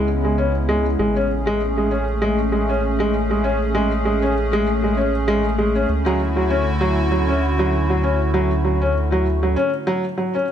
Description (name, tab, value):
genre	IDM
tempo	98 BPM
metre	4/4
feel	swing 56% on 16ths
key	unclear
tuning	A4 = 440 Hz
part	hollow soft pad	sustained chords	0.0-9.5 s	C#3 to G#4	-22 LUFS	equal	chorus
part	felt-muted upright piano	arpeggios	0.0-10.4 s	F#3 to C#4	-20 LUFS	equal	low-pass filter, ping-pong delay
part	rubbery square bass	bass	0.0-9.6 s	A1 to D2	-22 LUFS	equal	tube saturation
room	moderate plate reverb, RT60 3.3 s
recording	none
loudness	-17 LUFS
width	side -9 dB against mid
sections	0.0-10.5 A section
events	break 9.6-10.5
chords	0.0 C#m7; 1.0 Amaj7; 5.9 Dmaj7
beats	0.38 | 0.99 1.60 2.22 2.83 | 3.44 4.05 4.67 5.28 | 5.89 6.50 7.12 7.73 | 8.34 8.95 9.56 10.18